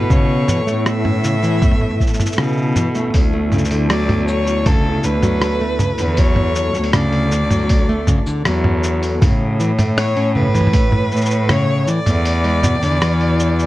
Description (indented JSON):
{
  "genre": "folktronica",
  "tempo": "79 BPM",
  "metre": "4/4",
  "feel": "straight",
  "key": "D lydian",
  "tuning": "A4 = 440 Hz",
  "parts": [
    { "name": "rich violin", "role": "melody", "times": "0.0-13.7 s", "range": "A4 to E5", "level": "-22 LUFS", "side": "equal", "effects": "digital delay, plate reverb" },
    { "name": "warm analog pad", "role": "sustained chords", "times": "0.0-13.7 s", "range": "C#3 to G#5", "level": "-26 LUFS", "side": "equal", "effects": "chorus, vintage 12-bit sampler grit, plate reverb" },
    { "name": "nylon-string guitar", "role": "arpeggios", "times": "0.0-13.7 s", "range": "B2 to C#4", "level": "-21 LUFS", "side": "equal", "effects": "digital delay" },
    { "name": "clear cello", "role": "bass", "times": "0.0-13.7 s", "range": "D2 to B2", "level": "-19 LUFS", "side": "equal", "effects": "tube saturation" },
    { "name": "lo-fi sampler-style drum kit", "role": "drums", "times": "0.0-13.7 s", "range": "cabasa, hi-hat, rim click, toms", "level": "-20 LUFS", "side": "right 1 dB", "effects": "small room ambience" },
    { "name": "electronic kick drum", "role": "drums", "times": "0.1-10.9 s", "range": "none", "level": "-16 LUFS", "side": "equal", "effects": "small room ambience" }
  ],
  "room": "light reverb",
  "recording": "dark, warm production",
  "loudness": "-14 LUFS",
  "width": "side -16 dB against mid",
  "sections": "0.0-13.7 A section",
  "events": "kick drops out 12.3-13.7",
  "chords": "0.0 A; 3.1 Dmaj7; 9.2 A; 12.3 E7"
}